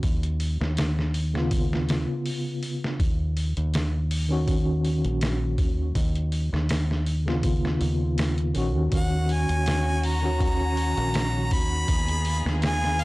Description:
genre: trip hop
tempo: 81 BPM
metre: 4/4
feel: swing 54% on 16ths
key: unclear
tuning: A4 = 438 Hz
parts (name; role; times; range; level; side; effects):
- deep dub fingered electric bass; bass; 0.0-13.0 s; Bb1 to Eb2; -25 LUFS; equal; none
- trip hop sampler-style drum kit; drums; 0.0-13.0 s; hi-hat, kick drum, snare drum; -28 LUFS; equal; none
- tine electric piano; accompaniment; 1.3-11.9 s; Db3 to Gb4; -29 LUFS; equal; medium stereo tremolo, tape echo
- rich symphonic string section; sustained chords; 8.9-13.0 s; Eb3 to Ab4; -34 LUFS; equal; none
- bright harmonica; melody; 9.0-13.0 s; Gb5 to Cb6; -28 LUFS; equal; dub echo
room: little or no reverb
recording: dry, gritty hardware recording, transformer saturation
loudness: -22 LUFS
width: side -21 dB against mid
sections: 0.0-13.0 A section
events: none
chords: 0.0 Db7/Eb; 3.0 Ebm7; 6.0 Db7/Eb; 8.9 Ebm7; 11.9 Db7/Eb (rootless)

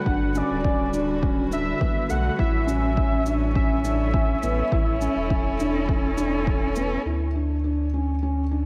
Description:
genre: piano and strings electronica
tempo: 103 BPM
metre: 4/4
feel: straight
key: unclear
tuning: A4 = 440 Hz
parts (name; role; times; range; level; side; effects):
- warm velvety synth lead; melody; 0.0-6.4 s; D5 to F#5; -31 LUFS; equal; chorus, tape echo
- dark string quartet; sustained chords; 0.0-8.7 s; D3 to B4; -32 LUFS; equal; sidechain pumping
- felt-muted upright piano; riff; 0.1-8.7 s; A3 to E4; -29 LUFS; equal; lush chorus, tape echo
- warm sub bass; bass; 0.1-8.7 s; D1 to D2; -29 LUFS; equal; sidechain pumping
- electronic kick drum; drums; 0.1-6.6 s; none; -27 LUFS; equal; none
- shaker; drums; 0.3-6.9 s; none; -47 LUFS; equal; low-pass filter on perc
room: moderate lush hall reverb, RT60 1.7 s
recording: dreamy mix soaked in reverb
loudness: -23 LUFS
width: mono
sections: 0.0-7.1 A section; 7.1-8.7 B section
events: none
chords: 0.0 Gmaj7; 2.4 A7; 7.1 Dmaj7

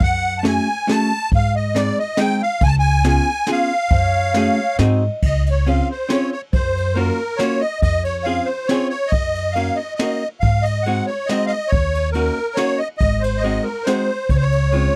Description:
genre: musette waltz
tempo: 138 BPM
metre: 3/4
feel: straight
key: F# harmonic minor, Db major from 5.2 s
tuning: A4 = 440 Hz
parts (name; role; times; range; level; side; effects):
- musette accordion; melody; 0.0-15.0 s; Bb4 to A5; -23 LUFS; equal; none
- upright bass; bass; 0.0-14.9 s; Ab1 to G#2; -22 LUFS; equal; none
- jazz brush drum kit; drums; 0.0-14.8 s; crash cymbal, kick drum, ride cymbal, snare drum; -24 LUFS; equal; none
- archtop guitar, miked and amplified; accompaniment; 0.4-15.0 s; G#3 to G#4; -23 LUFS; equal; none
- warm clarinet; second line; 3.9-5.2 s; C#5 to D#5; -28 LUFS; equal; none
room: little or no reverb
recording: dry, close 1970s-style studio recording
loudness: -19 LUFS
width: mono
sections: 0.0-5.2 A section; 5.2-15.0 B section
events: none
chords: 0.0 F#madd9; 1.3 G#; 2.6 C#7; 3.9 F#madd9; 4.8 G#7; 5.2 Dbmaj7; 6.5 Gbmaj7; 7.8 Dbmaj7/F; 9.1 Gb6; 10.4 Ab7; 11.7 Ebm7; 13.0 Ab7; 14.3 Dbmaj7

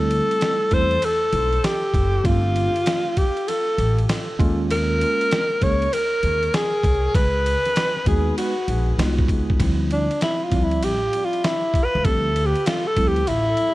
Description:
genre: hip hop, jazz-hop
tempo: 98 BPM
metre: 4/4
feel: swing 65% on 16ths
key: unclear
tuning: A4 = 440 Hz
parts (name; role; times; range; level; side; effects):
- clear alto saxophone; melody; 0.0-13.7 s; D4 to Db5; -21 LUFS; equal; dub echo
- mellow tine electric piano; accompaniment; 0.0-13.2 s; F3 to Ab4; -28 LUFS; right 1 dB; medium stereo tremolo, dub echo
- upright bass; bass; 0.0-13.5 s; F#1 to E2; -23 LUFS; equal; none
- trip hop sampler-style drum kit; drums; 0.1-13.7 s; hi-hat, kick drum, ride cymbal, snare drum; -25 LUFS; equal; dub echo
room: digital ambience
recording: echo-heavy mix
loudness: -18 LUFS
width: side -18 dB against mid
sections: 0.0-9.6 A section; 9.6-13.7 B section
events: alto saxophone solo 9.6-13.7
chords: 0.0 D9sus4 (rootless); 2.2 G9sus4; 4.4 Eb9sus4; 7.1 C#9sus4; 9.6 Dm11

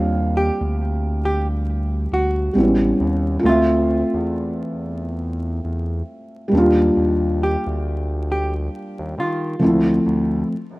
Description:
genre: lo-fi hip hop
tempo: 68 BPM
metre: 4/4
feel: swing 57% on 16ths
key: unclear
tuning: A4 = 442 Hz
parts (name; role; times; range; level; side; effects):
- felt-muted upright piano; accompaniment; 0.0-10.5 s; F3 to F5; -20 LUFS; equal; low-pass filter
- smooth gliding synth bass; bass; 0.0-10.4 s; A1 to Eb3; -23 LUFS; equal; none
- hollow-body jazz guitar; melody; 0.4-9.8 s; F4 to G4; -25 LUFS; equal; none
room: light reverb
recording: rough home demo mix, vinyl crackle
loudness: -17 LUFS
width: side -20 dB against mid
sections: 0.0-10.5 A section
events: none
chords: 0.0 Ebmaj7; 2.6 A7; 3.4 Dm9; 6.5 Ebmaj7; 9.6 Dm9

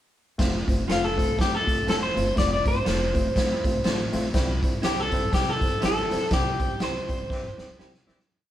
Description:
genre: uptempo 1960s-style soul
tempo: 122 BPM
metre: 4/4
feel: swing 58% on 8ths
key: F major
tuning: A4 = 438 Hz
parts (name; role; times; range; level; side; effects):
- tine electric piano; accompaniment; 0.4-8.2 s; G3 to C5; -31 LUFS; left 1 dB; none
- upright bass; bass; 0.4-8.2 s; F1 to C3; -32 LUFS; equal; none
- raw garage drum kit; drums; 0.4-8.3 s; hi-hat, kick drum, snare drum; -26 LUFS; equal; none
- electric guitar through a small old amp; melody; 0.9-7.8 s; F4 to D5; -26 LUFS; left 1 dB; none
- electric guitar through a small old amp; stabs; 0.9-7.9 s; E4 to C5; -34 LUFS; right 1 dB; none
- mellow horn section; second line; 7.3-8.2 s; E3 to G4; -47 LUFS; left 1 dB; none
room: moderate stone room reverb, RT60 1.3 s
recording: band playing live in one room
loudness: -22 LUFS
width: side -12 dB against mid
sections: 0.4-8.3 verse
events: fade-out 6.3-8.3; band accent 6.3-8.3; drum fill 7.3-8.3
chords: 0.4 F; 4.3 C

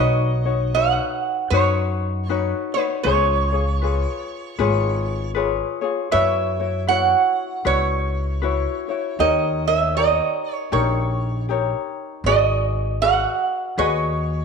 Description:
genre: Hawaiian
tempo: 78 BPM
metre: 4/4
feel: swing 62% on 8ths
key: B major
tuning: A4 = 439 Hz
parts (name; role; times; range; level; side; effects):
- lap resonator guitar; melody; 0.0-14.4 s; B4 to F#5; -21 LUFS; right 7 dB; none
- ukulele; accompaniment; 0.0-14.4 s; D#4 to D#5; -24 LUFS; left 9 dB; none
- upright bass; bass; 0.0-14.4 s; G#1 to F#2; -23 LUFS; equal; none
room: wet echo chamber reverb, RT60 1.4 s, small room ambience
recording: 1960s-style stereo with parts hard left and right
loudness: -18 LUFS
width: side -5 dB against mid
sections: 0.0-14.4 A section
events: none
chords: 0.0 Badd9; 3.0 C#7; 6.1 F#7sus4; 9.2 D#7; 12.2 G#m7

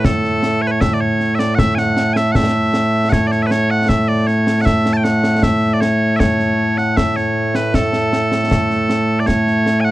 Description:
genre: scottish traditional, Scottish pipe music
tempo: 78 BPM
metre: 2/4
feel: straight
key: A major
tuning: A4 = 440 Hz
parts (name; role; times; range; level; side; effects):
- loud bright bagpipes; melody; 0.0-9.9 s; A2 to A5; -14 LUFS; equal; none
- concert snare drum and concert bass drum; drums; 0.0-9.8 s; none; -20 LUFS; equal; none
room: light reverb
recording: dry, close 1970s-style studio recording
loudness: -14 LUFS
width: side -16 dB against mid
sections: 0.0-9.3 A section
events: none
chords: none

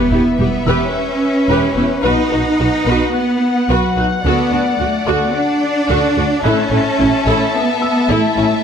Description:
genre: cinematic, hybrid orchestral and electronic film score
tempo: 109 BPM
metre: 4/4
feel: straight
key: unclear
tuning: A4 = 438 Hz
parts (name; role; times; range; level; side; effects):
- warm symphonic violin section; second line; 0.0-8.6 s; B4 to A5; -20 LUFS; left 4 dB; none
- rich studio viola section; accompaniment; 0.0-8.4 s; C#4 to B4; -20 LUFS; equal; none
- rich symphonic cello section; bass; 0.0-8.6 s; F#3 to D#4; -17 LUFS; right 1 dB; none
- impact; sound effects; 0.0-2.0 s; none; -26 LUFS; left 1 dB; none
- tight sequenced synth; arpeggios; 0.1-8.5 s; D3 to B4; -23 LUFS; equal; chorus, tape echo
- rich studio double bass section; bass; 0.1-8.5 s; E1 to D2; -21 LUFS; right 1 dB; none
- warm grand piano; texture; 0.7-8.6 s; D5 to F#6; -29 LUFS; left 3 dB; tape echo
room: moderate scoring stage reverb, RT60 1.8 s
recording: none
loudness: -13 LUFS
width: side -7 dB against mid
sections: 0.0-8.6 A section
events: impact 0.0-2.0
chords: 0.0 Em; 2.0 B; 4.2 D; 6.5 A

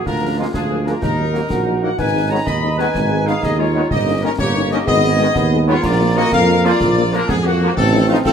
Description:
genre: military-style march for wind band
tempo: 125 BPM (dotted quarters)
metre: 6/8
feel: straight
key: Eb minor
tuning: A4 = 441 Hz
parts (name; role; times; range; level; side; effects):
- warm trumpet section; melody; 0.0-8.3 s; F4 to Cb6; -23 LUFS; left 1 dB; none
- bright large flute ensemble; second line; 0.0-8.3 s; F4 to Cb6; -24 LUFS; left 3 dB; none
- clear euphonium; second line; 0.0-8.3 s; Bb3 to Gb4; -22 LUFS; right 4 dB; none
- clear woodwind section; second line; 0.0-8.3 s; Ab3 to Eb5; -23 LUFS; left 3 dB; none
- mellow tuba; bass; 0.1-8.3 s; G1 to F2; -19 LUFS; right 3 dB; none
- concert snare drum, concert bass drum and clash cymbals; drums; 0.1-8.3 s; none; -25 LUFS; left 1 dB; none
- mellow French horn section; accompaniment; 0.2-8.2 s; F3 to Eb4; -25 LUFS; left 6 dB; none
- warm trombone section; sustained chords; 0.4-8.2 s; Eb3 to Eb4; -27 LUFS; right 2 dB; none
room: moderate recital hall reverb, RT60 1.4 s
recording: none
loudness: -14 LUFS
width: side -7 dB against mid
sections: 0.0-8.3 A section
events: none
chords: 0.1 Bb7/D; 1.0 Ebm; 2.0 Abm; 3.9 Eb7/G; 4.9 Abm; 5.8 Bb; 7.8 F7/A

